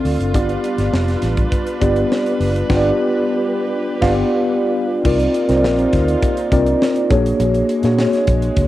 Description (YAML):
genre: polished 1980s jazz-funk pop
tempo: 102 BPM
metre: 4/4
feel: straight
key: unclear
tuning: A4 = 445 Hz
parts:
  - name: mellow tine electric piano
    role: accompaniment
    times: 0.0-8.7 s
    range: Bb3 to F5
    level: -16 LUFS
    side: equal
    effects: medium stereo tremolo, analog chorus, cassette tape, plate reverb
  - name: warm studio string section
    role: sustained chords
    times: 0.0-8.7 s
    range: C3 to B4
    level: -26 LUFS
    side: right 2 dB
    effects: stereo widening, cassette tape, plate reverb
  - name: vintage muted fingered electric bass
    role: bass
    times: 0.0-8.7 s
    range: F1 to Bb2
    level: -20 LUFS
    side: equal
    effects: none
  - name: crisp fusion drum kit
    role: drums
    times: 0.1-8.7 s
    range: crash cymbal, hi-hat, kick drum, snare drum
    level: -21 LUFS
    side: equal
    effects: none
room: wet booth ambience, RT60 0.2 s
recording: home recording on cassette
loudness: -14 LUFS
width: side -15 dB against mid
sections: 0.0-5.0 A section; 5.0-8.7 B section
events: band accent 2.7-5.0; tine electric piano fill 3.9-5.0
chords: 0.3 G7; 5.0 Cm11; 7.1 Bb7alt